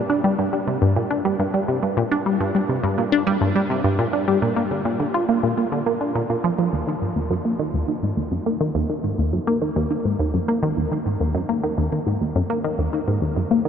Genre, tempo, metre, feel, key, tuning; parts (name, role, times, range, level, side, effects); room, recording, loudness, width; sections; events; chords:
ambient; 104 BPM; 4/4; straight; Eb minor from 6.7 s; A4 = 439 Hz
tight sequenced synth; solo; 0.1-13.7 s; Eb2 to F4; -19 LUFS; equal; chorus, tape echo
wet huge ambient reverb, RT60 7.7 s; in a vast, echoing space; -19 LUFS; side -8 dB against mid
0.0-6.7 A section; 6.7-13.7 B section